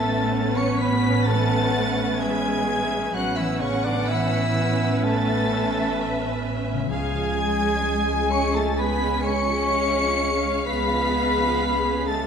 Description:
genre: cinematic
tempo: 64 BPM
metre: 4/4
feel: rubato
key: unclear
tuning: A4 = 440 Hz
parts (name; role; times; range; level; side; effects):
- clear studio violin section; melody; 0.0-12.3 s; C#6 to C#7; -30 LUFS; left 2 dB; none
- hollow concert flute; second line; 0.0-12.3 s; C#5 to C#6; -29 LUFS; left 3 dB; none
- mellow cor anglais; second line; 0.0-12.3 s; C#4 to C#5; -29 LUFS; right 2 dB; none
- rich studio violin section; second line; 0.0-12.3 s; C#5 to G#5; -31 LUFS; left 2 dB; none
- rich studio viola section; accompaniment; 0.0-12.3 s; C#3 to B4; -29 LUFS; right 2 dB; none
- mellow French horn section; sustained chords; 0.0-12.3 s; G#3 to C#4; -28 LUFS; left 1 dB; none
- concert harp; arpeggios; 0.0-10.8 s; A2 to E4; -36 LUFS; left 5 dB; none
- warm studio cello section; bass; 0.0-12.3 s; C#3 to C#4; -29 LUFS; right 3 dB; none
- warm studio double bass section; bass; 0.0-12.3 s; A1 to C#2; -28 LUFS; right 1 dB; none
room: wet concert hall reverb, RT60 1.8 s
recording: minimal, uncompressed stereo recording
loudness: -20 LUFS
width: side -7 dB against mid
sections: 0.0-12.3 A section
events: none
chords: 0.0 Aadd9; 6.9 C#

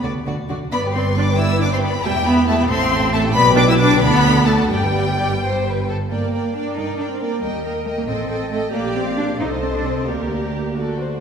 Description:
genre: quick classical-period movement for string orchestra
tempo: 85-94 BPM (dotted quarters)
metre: 6/8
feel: rubato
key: G major, G minor from 6.1 s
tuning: A4 = 440 Hz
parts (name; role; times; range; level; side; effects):
- rich chamber violin section; melody; 0.0-11.2 s; D5 to E6; -23 LUFS; left 4 dB; none
- rich chamber violin section; second line; 0.0-11.2 s; E4 to G5; -24 LUFS; left 3 dB; none
- rich chamber viola section; accompaniment; 0.0-11.2 s; G3 to Bb4; -22 LUFS; right 1 dB; none
- rich chamber cello section; bass; 0.0-10.8 s; E2 to Eb4; -23 LUFS; right 2 dB; none
- rich chamber double bass section; bass; 0.0-11.2 s; E1 to G2; -24 LUFS; right 2 dB; none
room: wet scoring stage reverb, RT60 1.6 s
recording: heard from further back in the room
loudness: -16 LUFS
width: side -7 dB against mid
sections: 0.0-6.1 A section; 6.1-11.2 A section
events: none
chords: 0.0 D; 0.7 G; 2.0 Em; 2.7 Am7; 3.3 G/B; 4.0 D; 4.7 G; 6.1 Gm; 7.4 Eb; 8.1 Am7b5; 8.7 Gm/Bb; 9.4 Adim/C; 10.1 Gm/D

